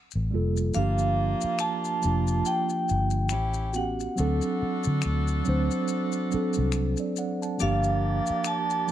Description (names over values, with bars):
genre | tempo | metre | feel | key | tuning
R&B, neo-soul | 70 BPM | 4/4 | swing 57% on 16ths | G minor | A4 = 436 Hz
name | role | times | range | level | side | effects
maracas and finger snaps | percussion | 0.1-8.9 s | none | -37 LUFS | left 11 dB | none
vintage muted fingered electric bass | bass | 0.2-8.3 s | F1 to D3 | -26 LUFS | left 1 dB | none
mellow tine electric piano | accompaniment | 0.3-8.9 s | F3 to A5 | -28 LUFS | right 2 dB | medium stereo tremolo
vibraphone with medium hard mallets | melody | 0.7-8.9 s | F5 to A5 | -29 LUFS | right 2 dB | none
bright saxophone section | stabs | 0.7-8.9 s | Bb3 to A4 | -37 LUFS | left 2 dB | none
percussive tonewheel organ | sustained chords | 7.6-8.9 s | G4 to D5 | -38 LUFS | left 2 dB | slow rotary speaker, overdrive
room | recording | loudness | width
light reverb, studio ambience | dark, warm production | -24 LUFS | side -12 dB against mid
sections
0.7-8.9 A section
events
none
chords
0.0 Gm9; 0.7 Gm7; 3.3 A13; 4.2 D7; 7.6 Gm7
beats
| 0.74 1.60 2.46 3.31 | 4.17 5.03 5.88 6.74 | 7.60 8.46